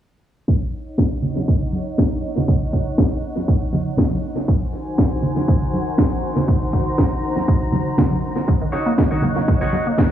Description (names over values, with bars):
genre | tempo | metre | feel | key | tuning
nu-disco, nu disco | 120 BPM | 4/4 | swing 55% on 16ths | Eb dorian | A4 = 440 Hz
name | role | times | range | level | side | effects
lush unison pad | sustained chords | 0.5-10.1 s | Eb3 to Bb5 | -26 LUFS | left 1 dB | chorus, sidechain pumping
electronic kick drum | drums | 0.5-10.1 s | none | -20 LUFS | equal | overdrive
electronic snare drum | drums | 1.0-10.1 s | none | -23 LUFS | equal | overdrive, tape echo
congas | percussion | 1.2-9.8 s | none | -25 LUFS | right 2 dB | tape echo
wide unison pluck | arpeggios | 8.5-10.1 s | Db3 to Bb3 | -23 LUFS | right 1 dB | sidechain pumping, tape echo
clean electric guitar | riff | 8.7-9.9 s | Eb4 to Db5 | -26 LUFS | left 1 dB | lush chorus, tape echo
room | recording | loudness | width
light reverb, digital ambience | echo-heavy mix, low-pass filter, studio ambience | -17 LUFS | side -10 dB against mid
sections
0.5-10.1 A section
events
filter sweep on analog synth pad 0.5-10.1; filter sweep 0.5-10.1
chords
0.5 Ebm7; 4.5 Ab7/Eb; 8.5 Ebm7